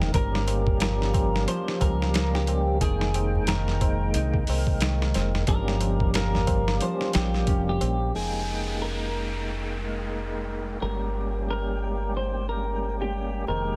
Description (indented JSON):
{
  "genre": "trip hop",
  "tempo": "90 BPM",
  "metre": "4/4",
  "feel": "swing 58% on 16ths",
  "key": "unclear",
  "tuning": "A4 = 443 Hz",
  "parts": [
    { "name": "tonewheel organ", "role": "accompaniment", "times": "0.0-13.8 s", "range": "G3 to G5", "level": "-35 LUFS", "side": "equal", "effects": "overdrive, chorus vibrato, slow rotary speaker, tremolo, tape echo" },
    { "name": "warbly tape-like pad", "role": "sustained chords", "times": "0.0-13.8 s", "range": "Ab3 to Bb5", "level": "-41 LUFS", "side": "equal", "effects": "chorus, built-in reverb" },
    { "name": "concert harp", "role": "arpeggios", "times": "0.0-13.8 s", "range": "Eb3 to Bb4", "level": "-36 LUFS", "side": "equal", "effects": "tape echo" },
    { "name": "deep dub fingered electric bass", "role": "bass", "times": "0.0-13.8 s", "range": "F1 to Db2", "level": "-30 LUFS", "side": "equal", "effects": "none" },
    { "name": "boom bap sampler-style drum kit", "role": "drums", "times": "0.0-8.0 s", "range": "hi-hat, kick drum, snare drum", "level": "-29 LUFS", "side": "equal", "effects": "none" },
    { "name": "tabla", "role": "percussion", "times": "0.0-8.1, 13.5-13.8 s", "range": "none", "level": "-38 LUFS", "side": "equal", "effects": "none" },
    { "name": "clean electric guitar", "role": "melody", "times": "0.2-13.8 s", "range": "G4 to C5", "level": "-35 LUFS", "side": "equal", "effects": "lush chorus, tape echo" },
    { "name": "downlifter", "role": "sound effects", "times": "8.1-13.5 s", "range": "none", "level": "-41 LUFS", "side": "equal", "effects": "none" },
    { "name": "flickering grainy texture", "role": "texture", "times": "9.7-13.8 s", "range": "Ab3 to G5", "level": "-43 LUFS", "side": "equal", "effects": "built-in reverb" }
  ],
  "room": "little or no reverb",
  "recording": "none",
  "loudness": "-26 LUFS",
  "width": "mono",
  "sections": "0.0-8.1 A section; 8.1-13.8 B section",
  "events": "none",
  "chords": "0.1 Gm7b5; 2.8 Fm11; 5.5 Gm7b5; 8.1 Fm11; 10.8 Gm7b5",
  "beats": "| 0.14 0.81 1.48 2.15 | 2.81 3.48 4.14 4.81 | 5.48 6.14 6.81 7.48 | 8.14 8.81 9.48 10.14 | 10.81 11.48 12.14 12.81 | 13.48"
}